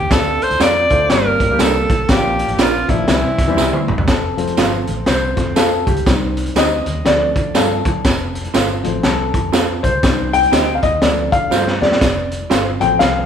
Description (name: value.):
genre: uptempo 1960s-style soul.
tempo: 121 BPM.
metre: 4/4.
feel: swing 61% on 8ths.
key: F mixolydian from 4.1 s.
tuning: A4 = 440 Hz.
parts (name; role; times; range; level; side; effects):
bright alto saxophone; melody; 0.0-3.9 s; E4 to D5; -17 LUFS; equal; none.
vintage muted fingered electric bass; bass; 0.0-13.3 s; F1 to D3; -24 LUFS; equal; none.
dark upright piano; accompaniment; 0.1-13.3 s; Eb3 to G5; -19 LUFS; left 3 dB; none.
crunchy breakbeat drum kit; drums; 0.1-13.1 s; hi-hat, kick drum, snare drum, toms; -17 LUFS; equal; none.
congas; percussion; 0.1-13.1 s; none; -33 LUFS; equal; none.
tambourine; percussion; 0.1-13.1 s; none; -31 LUFS; right 4 dB; none.
electric guitar through a small old amp; stabs; 0.6-12.6 s; D4 to F5; -21 LUFS; right 5 dB; none.
room: moderate large studio reverb, RT60 1.2 s.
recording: band playing live in one room.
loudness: -13 LUFS.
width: side -8 dB against mid.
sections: 0.0-4.1 A section; 4.1-13.3 B section.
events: drum fill 3.6-4.1, 11.5-12.0; upright piano solo 4.1-13.3.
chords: 0.1 Dm; 1.1 Gm; 2.1 Bb; 3.1 C; 4.1 F; 6.1 Cm; 7.1 Dm; 8.0 F; 10.0 Cm; 11.0 Dm; 12.0 F.